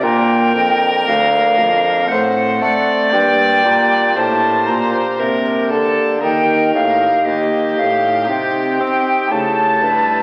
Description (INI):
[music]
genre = classical, baroque-style sonata movement with continuo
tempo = 58 BPM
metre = 3/4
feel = straight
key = G minor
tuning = A4 = 440 Hz
[part]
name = silver concert flute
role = melody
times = 0.0-10.2 s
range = Eb5 to Bb5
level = -18 LUFS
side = equal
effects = none
[part]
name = rich violin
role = second line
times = 0.0-10.2 s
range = G4 to D5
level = -21 LUFS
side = equal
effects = none
[part]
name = chamber organ, sparkling flutes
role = accompaniment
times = 0.0-10.2 s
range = D2 to C5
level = -24 LUFS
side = equal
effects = none
[part]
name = warm bassoon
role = bass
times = 0.0-10.2 s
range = D2 to C4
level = -22 LUFS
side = equal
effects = none
[sound]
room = wet recital hall reverb, RT60 1.6 s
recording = very old 78 rpm record, vinyl crackle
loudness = -15 LUFS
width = mono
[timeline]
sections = 0.0-10.2 A section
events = none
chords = 0.0 Gm; 2.1 F#dim/A; 3.1 Gm; 6.2 Eb; 8.3 Cm; 9.3 A7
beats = | 0.02 1.06 2.10 | 3.13 4.16 5.19 | 6.22 7.26 8.28 | 9.31